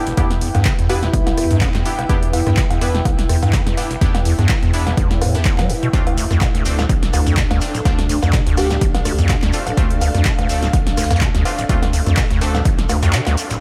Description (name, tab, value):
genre	acid house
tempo	125 BPM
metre	4/4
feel	swing 55% on 16ths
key	unclear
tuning	A4 = 440 Hz
part	band-passed chord stab	stabs	0.0-13.1 s	A3 to B4	-31 LUFS	equal	chorus, diffuse ambient delay
part	granular cloud pad	texture	0.0-13.6 s	D4 to G5	-28 LUFS	equal	built-in reverb, sidechain pumping
part	acid bass, square	riff	0.1-13.6 s	D1 to G3	-23 LUFS	equal	overdrive, lush chorus, sidechain pumping, diffuse ambient delay
part	breakbeat sampler-style drum kit	drums	0.1-13.6 s	hi-hat, snare drum, tambourine	-38 LUFS	equal	none
part	punchy analog drum machine	drums	0.1-13.6 s	cowbell, handclaps, hi-hat, rim click, snare drum	-26 LUFS	equal	overdrive
part	round analog bass	bass	0.2-13.1 s	A1 to E2	-24 LUFS	equal	sidechain pumping
part	electronic kick drum	drums	0.2-12.8 s	none	-20 LUFS	equal	overdrive
part	airy dreamy lead	melody	0.9-1.7, 8.6-8.7 s	E4 to G4	-27 LUFS	equal	chorus, cassette tape, delay
part	shekere	percussion	5.9-13.6 s	none	-36 LUFS	equal	none
room	light reverb, digital ambience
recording	none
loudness	-17 LUFS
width	mono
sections	0.0-13.6 A section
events	drop 0.0-13.6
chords	0.0 Em7; 5.9 Dm7